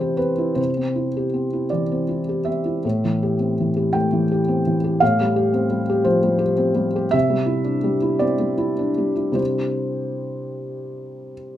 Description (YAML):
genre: neoclassical minimalist piano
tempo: 50-57 BPM (dotted quarters)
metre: 6/8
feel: rubato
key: C major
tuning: A4 = 440 Hz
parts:
  - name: felt-muted upright piano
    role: solo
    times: 0.0-11.6 s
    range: A2 to G5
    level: -19 LUFS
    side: equal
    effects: none
room: wet small room reverb, RT60 0.6 s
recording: rough home demo mix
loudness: -18 LUFS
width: side -12 dB against mid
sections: 0.0-11.6 A section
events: none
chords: 0.0 Cadd9; 2.8 Am7; 5.0 Fadd9/A; 7.1 Cadd9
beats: | 0.58 1.71 | 2.84 3.95 | 5.01 6.06 | 7.14 8.23 | 9.39 10.57